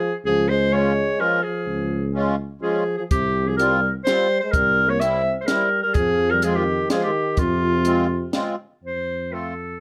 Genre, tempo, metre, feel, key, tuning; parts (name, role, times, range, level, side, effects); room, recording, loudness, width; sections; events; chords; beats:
alpine folk, alpine dance band; 126 BPM; 3/4; straight; F minor; A4 = 440 Hz
clear clarinet; melody; 0.0-9.8 s; F4 to E5; -23 LUFS; equal; plate reverb
mellow euphonium; second line; 0.0-8.4 s; C3 to C4; -30 LUFS; equal
dark tuba; bass; 0.2-9.8 s; C2 to F2; -27 LUFS; equal
accordion; accompaniment; 0.7-9.5 s; G3 to F4; -28 LUFS; equal; light tremolo tuning
compact cocktail drum kit; drums; 3.1-8.4 s; hi-hat, kick drum, snare drum; -26 LUFS; equal
light reverb; -21 LUFS; mono
0.0-8.8 A section
0.2 Db; 3.1 Csus4; 4.5 C; 5.9 Fm; 8.8 F
| 0.24 0.72 1.19 | 1.66 2.14 2.62 | 3.10 3.58 4.05 | 4.53 5.00 5.47 | 5.94 6.42 6.89 | 7.37 7.85 8.33 | 8.82 9.31